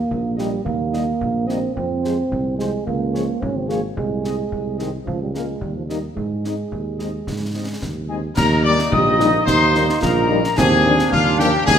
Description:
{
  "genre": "military-style march for wind band",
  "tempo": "109 BPM",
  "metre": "2/4",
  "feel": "straight",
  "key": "Ab major, Eb major from 8.4 s",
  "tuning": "A4 = 440 Hz",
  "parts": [
    { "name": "warm euphonium", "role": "second line", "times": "0.0-11.8 s", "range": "Eb3 to G4", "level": "-23 LUFS", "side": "right 4 dB", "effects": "none" },
    { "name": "mellow tuba", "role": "bass", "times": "0.1-11.8 s", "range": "Ab1 to Ab2", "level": "-23 LUFS", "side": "right 2 dB", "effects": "none" },
    { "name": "concert bass drum, concert snare drum and clash cymbals", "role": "drums", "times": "0.1-11.8 s", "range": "none", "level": "-27 LUFS", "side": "left 2 dB", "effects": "none" },
    { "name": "clear trumpet section", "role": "melody", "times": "0.4-11.8 s", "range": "F4 to Eb5", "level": "-22 LUFS", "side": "left 3 dB", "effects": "none" },
    { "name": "mellow French horn section", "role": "accompaniment", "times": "0.4-11.5 s", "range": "F3 to Ab4", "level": "-27 LUFS", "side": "left 7 dB", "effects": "none" },
    { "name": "wooden piccolo", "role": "second line", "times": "8.1-11.8 s", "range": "F5 to Eb6", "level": "-20 LUFS", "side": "left 4 dB", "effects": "none" },
    { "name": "bright trombone section", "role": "sustained chords", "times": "8.4-11.8 s", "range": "Bb3 to Eb4", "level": "-24 LUFS", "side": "right 2 dB", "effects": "none" }
  ],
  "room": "moderate concert hall reverb, RT60 2.3 s",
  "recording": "none",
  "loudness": "-17 LUFS",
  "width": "side -8 dB against mid",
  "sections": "0.0-8.4 A section; 8.4-11.8 B section",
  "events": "none",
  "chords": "0.0 Eb; 1.8 Fm; 2.9 Db; 4.0 Ab/C; 5.1 Bbm7/Db; 5.6 Eb; 6.2 Ab; 8.4 Eb; 10.6 Bb7/Eb"
}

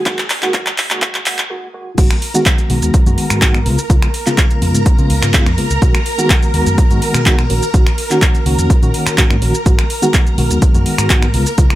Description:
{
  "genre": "filtered disco house",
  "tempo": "125 BPM",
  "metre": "4/4",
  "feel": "straight",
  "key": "unclear",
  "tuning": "A4 = 439 Hz",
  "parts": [
    { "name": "reed electric piano", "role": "accompaniment", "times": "0.0-11.7 s", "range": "Db3 to Gb4", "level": "-18 LUFS", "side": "equal", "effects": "fast tremolo, phaser, vintage 12-bit sampler grit, sidechain pumping, low-pass filter" },
    { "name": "string machine, full ensemble", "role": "sustained chords", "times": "0.0-11.8 s", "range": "Ab4 to Bb5", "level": "-23 LUFS", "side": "equal", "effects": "ensemble chorus, sidechain pumping, low-pass filter" },
    { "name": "vintage muted fingered electric bass", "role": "bass", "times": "0.1-11.7 s", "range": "Ab1 to Db3", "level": "-18 LUFS", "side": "equal", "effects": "sidechain pumping, high-pass filter, low-pass filter" },
    { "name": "electronic kick drum", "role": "drums", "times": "0.1-11.7 s", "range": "none", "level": "-13 LUFS", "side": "equal", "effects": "none" },
    { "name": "punchy analog drum machine", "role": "drums", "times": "0.1-11.8 s", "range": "crash cymbal, finger snaps, handclaps, hi-hat, shaker", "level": "-18 LUFS", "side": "equal", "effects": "none" }
  ],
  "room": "little or no reverb",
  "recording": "high-pass filter",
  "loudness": "-11 LUFS",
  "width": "side -15 dB against mid",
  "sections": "0.0-2.0 A section; 2.0-11.8 B section",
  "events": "build-up 0.0-2.0; drum fill 0.0-1.5; filter sweep 0.0-2.0; break 1.5-2.0; drop 2.0-11.8",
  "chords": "0.0 Ebm/Bb; 2.0 Abm7; 3.7 Db7; 5.8 B6; 7.5 Ebm7/Bb; 9.7 Abm7"
}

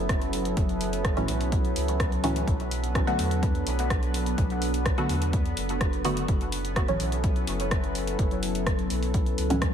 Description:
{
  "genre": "dub techno",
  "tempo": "126 BPM",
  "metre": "4/4",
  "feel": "straight",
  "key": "B minor",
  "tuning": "A4 = 438 Hz",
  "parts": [
    { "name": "warbly tape-like pad", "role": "sustained chords", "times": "0.0-9.7 s", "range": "F#3 to A4", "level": "-31 LUFS", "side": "equal", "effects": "chorus, built-in reverb, sidechain pumping" },
    { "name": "soft dub sub bass", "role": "bass", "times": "0.0-9.7 s", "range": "F#1 to E2", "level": "-30 LUFS", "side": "equal", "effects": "sidechain pumping" },
    { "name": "bubbling stepped-filter texture", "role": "texture", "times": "0.0-9.7 s", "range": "B3 to B4", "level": "-36 LUFS", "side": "right 1 dB", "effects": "chorus, built-in reverb, sidechain pumping" },
    { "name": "deep house drum kit", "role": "drums", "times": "0.1-9.7 s", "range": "hi-hat, rim click", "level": "-33 LUFS", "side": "equal", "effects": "none" },
    { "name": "electronic kick drum", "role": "drums", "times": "0.1-9.7 s", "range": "none", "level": "-27 LUFS", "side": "equal", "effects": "none" },
    { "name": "filtered dub chord stab", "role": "stabs", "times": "1.2-9.7 s", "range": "A2 to F#4", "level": "-31 LUFS", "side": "equal", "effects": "chorus, phaser, sidechain pumping, dub echo" }
  ],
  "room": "moderate lush hall reverb, RT60 1.8 s, digital ambience",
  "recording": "dreamy mix soaked in reverb",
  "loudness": "-24 LUFS",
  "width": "side -8 dB against mid",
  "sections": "0.0-9.7 A section",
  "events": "none",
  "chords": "0.0 F#m7; 2.5 Bm7; 6.3 F#m7"
}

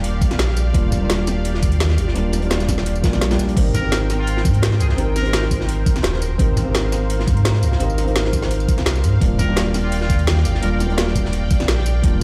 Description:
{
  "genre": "liquid drum and bass",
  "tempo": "170 BPM",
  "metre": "4/4",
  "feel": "straight",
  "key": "Ab lydian",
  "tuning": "A4 = 440 Hz",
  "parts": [
    { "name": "felt-muted upright piano", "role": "accompaniment", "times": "0.0-12.2 s", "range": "G3 to Bb4", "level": "-27 LUFS", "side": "equal", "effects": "none" },
    { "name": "lush unison pad", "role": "sustained chords", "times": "0.0-12.2 s", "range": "G4 to G5", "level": "-33 LUFS", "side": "equal", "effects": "chorus, phaser" },
    { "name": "sub bass with octave", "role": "bass", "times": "0.0-12.2 s", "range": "Eb1 to Ab2", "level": "-22 LUFS", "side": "equal", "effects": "none" },
    { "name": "crunchy breakbeat drum kit", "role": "drums", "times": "0.0-12.1 s", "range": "hi-hat, snare drum", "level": "-31 LUFS", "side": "equal", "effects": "high-pass filter on hats, high-pass filter on snare, high-pass filter on room" },
    { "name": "garage drum kit", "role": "drums", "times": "0.0-12.1 s", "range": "crash cymbal, hi-hat, snare drum, tambourine", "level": "-27 LUFS", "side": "equal", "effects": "overdrive" },
    { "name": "electronic kick drum", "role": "drums", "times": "0.2-12.1 s", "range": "none", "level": "-21 LUFS", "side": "equal", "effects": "overdrive" },
    { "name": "trumpet with straight mute", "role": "melody", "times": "3.7-5.4, 9.4-10.8 s", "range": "F4 to Bb4", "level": "-34 LUFS", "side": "equal", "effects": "dub echo" }
  ],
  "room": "small room ambience",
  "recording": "played on a big sound system in a bare room, large studio reverb",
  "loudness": "-18 LUFS",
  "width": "mono",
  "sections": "0.0-12.2 A section",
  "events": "none",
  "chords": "0.0 Ebmaj9; 3.6 Abmaj9; 9.2 Ebmaj9"
}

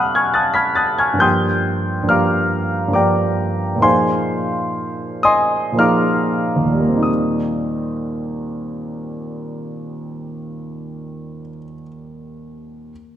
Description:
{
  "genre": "classical, impressionist solo piano",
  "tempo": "46-74 BPM",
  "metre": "3/4",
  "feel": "rubato",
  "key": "Eb major",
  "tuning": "A4 = 440 Hz",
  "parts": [
    { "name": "warm grand piano", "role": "solo", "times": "0.0-12.9 s", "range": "Eb2 to B6", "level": "-17 LUFS", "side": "equal", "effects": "none" }
  ],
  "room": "wet concert hall reverb, RT60 2.2 s",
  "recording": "minimal, uncompressed stereo recording",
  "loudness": "-15 LUFS",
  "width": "side -10 dB against mid",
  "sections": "0.0-7.1 A section; 7.1-10.7 B section",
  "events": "slowing down 0.0-7.1",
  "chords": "0.0 B9; 1.2 Gm7; 3.8 Bb9sus4; 7.1 Eb6"
}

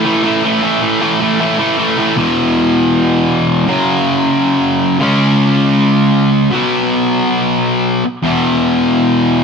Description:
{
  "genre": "punk",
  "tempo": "158 BPM",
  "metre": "4/4",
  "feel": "straight",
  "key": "E major",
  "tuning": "A4 = 440 Hz",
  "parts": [
    { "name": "distorted electric guitar", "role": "solo", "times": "0.0-9.4 s", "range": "E2 to C#4", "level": "-11 LUFS", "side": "equal", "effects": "distortion" }
  ],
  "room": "moderate stone room reverb, RT60 1.1 s",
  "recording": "band playing live in one room",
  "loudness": "-11 LUFS",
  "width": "side -5 dB against mid",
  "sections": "0.0-2.2 A section; 2.2-9.4 B section",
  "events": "none",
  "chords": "0.0 A5; 2.2 E5; 3.7 F#5; 5.0 C#5; 6.5 B5; 8.2 E5"
}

